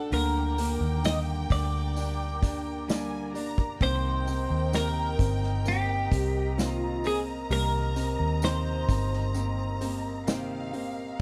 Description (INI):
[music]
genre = pop ballad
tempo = 65 BPM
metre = 4/4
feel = straight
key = C minor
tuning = A4 = 441 Hz
[part]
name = twelve-string electric guitar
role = melody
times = 0.0-10.7 s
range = G4 to Eb5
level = -34 LUFS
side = equal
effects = analog chorus, slapback echo
[part]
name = warm studio violin section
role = second line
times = 0.0-11.2 s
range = F5 to Bb5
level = -42 LUFS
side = equal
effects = none
[part]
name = warm upright piano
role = accompaniment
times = 0.0-11.2 s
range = D3 to D4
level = -38 LUFS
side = equal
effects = none
[part]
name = airy breathy pad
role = sustained chords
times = 0.0-11.2 s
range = D4 to D6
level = -43 LUFS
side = equal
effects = chorus
[part]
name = flamenco guitar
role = arpeggios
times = 0.0-11.2 s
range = C3 to G4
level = -42 LUFS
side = equal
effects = none
[part]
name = vintage muted fingered electric bass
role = bass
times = 0.0-11.2 s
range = G1 to Eb2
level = -32 LUFS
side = equal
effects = none
[part]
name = unplugged drum kit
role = drums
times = 0.1-10.9 s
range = hi-hat, kick drum, snare drum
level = -31 LUFS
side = equal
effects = none
[part]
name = tambourine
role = percussion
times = 0.6-10.5 s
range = none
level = -48 LUFS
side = equal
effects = none
[sound]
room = little or no reverb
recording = dry, close 1970s-style studio recording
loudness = -28 LUFS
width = mono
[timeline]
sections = 0.0-11.2 A section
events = none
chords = 0.1 Gm/D; 3.8 Cm7